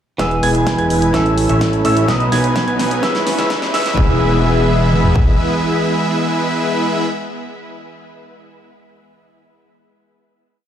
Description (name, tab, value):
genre	EDM, festival progressive house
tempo	127 BPM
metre	4/4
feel	straight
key	E major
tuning	A4 = 438 Hz
part	direct-recorded clean electric guitar	accompaniment	0.2-7.1 s	A2 to B4	-20 LUFS	right 2 dB	lush chorus, sidechain pumping, ping-pong delay
part	supersaw pad	sustained chords	0.2-7.0 s	B3 to E6	-25 LUFS	left 2 dB	sidechain pumping, low-pass filter
part	warm grand piano	arpeggios	0.2-7.0 s	D#6 to G#6	-24 LUFS	equal	sidechain pumping, low-pass filter, ping-pong delay
part	supersaw chords	riff	0.2-7.0 s	F#3 to G#5	-19 LUFS	equal	sidechain pumping, low-pass filter, ping-pong delay
part	fat analog bass	bass	0.2-5.4 s	E1 to C#2	-19 LUFS	equal	sidechain pumping
part	big-room dance drum kit	drums	0.2-5.3 s	kick drum, toms	-15 LUFS	equal	high-pass filter on kick, high-pass filter on toms
part	big-room dance drum kit	drums	0.2-4.0 s	hi-hat, snare drum	-24 LUFS	equal	none
part	riser	sound effects	2.1-4.0 s	none	-30 LUFS	equal	none
room	moderate huge ambient reverb, RT60 4.8 s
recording	played on a big sound system in a bare room, large studio reverb, high-pass filter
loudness	-13 LUFS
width	side -9 dB against mid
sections	0.2-4.0 build; 4.0-7.8 final chord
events	build-up 0.2-4.0; drum fill 0.2-4.0; filter sweep on supersaw synth 0.2-4.0; filter sweep 0.2-4.0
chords	0.2 E; 1.1 A; 2.1 B; 3.0 C#m7; 4.0 E